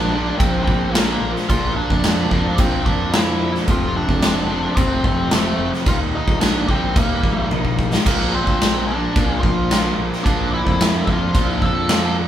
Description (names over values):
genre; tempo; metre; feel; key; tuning
quiet-loud alternative rock; 110 BPM; 4/4; straight; unclear; A4 = 441 Hz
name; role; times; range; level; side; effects
octave-fuzz lead guitar; melody; 0.0-12.1 s; A3 to A5; -23 LUFS; equal; distortion
distorted electric guitar; riff; 0.0-12.3 s; F2 to Eb4; -23 LUFS; equal; distortion
fuzz fingered electric bass; bass; 0.0-12.3 s; F1 to F2; -24 LUFS; equal; overdrive
huge arena drum kit; drums; 0.4-12.0 s; crash cymbal, kick drum, snare drum, toms; -19 LUFS; equal; none
room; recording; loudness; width
light reverb; band playing live in one room; -16 LUFS; side -11 dB against mid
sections
0.0-12.3 A section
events
drum fill 7.5-8.1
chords
0.0 Bb; 3.7 F; 5.9 Eb; 8.1 Bb